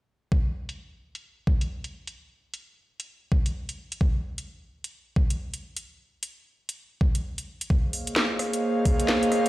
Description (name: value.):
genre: UK garage, two-step garage.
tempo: 130 BPM.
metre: 4/4.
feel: swing 61% on 16ths.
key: Bb minor.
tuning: A4 = 440 Hz.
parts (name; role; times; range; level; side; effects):
electronic kick drum; drums; 0.3-9.0 s; none; -22 LUFS; equal; none.
garage drum kit; drums; 0.7-9.5 s; hi-hat, rim click, snare drum; -28 LUFS; equal; low-pass filter on hats, low-pass filter on snare.
airy breathy pad; sustained chords; 8.0-9.5 s; Bb3 to F5; -24 LUFS; right 1 dB; chorus, sidechain pumping.
room: light reverb.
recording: played on a big sound system in a bare room, stone room reverb.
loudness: -24 LUFS.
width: side -17 dB against mid.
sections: 0.3-9.5 A section.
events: filter sweep on drum 0.3-9.5.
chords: 0.3 N.C.; 7.7 Bbm11.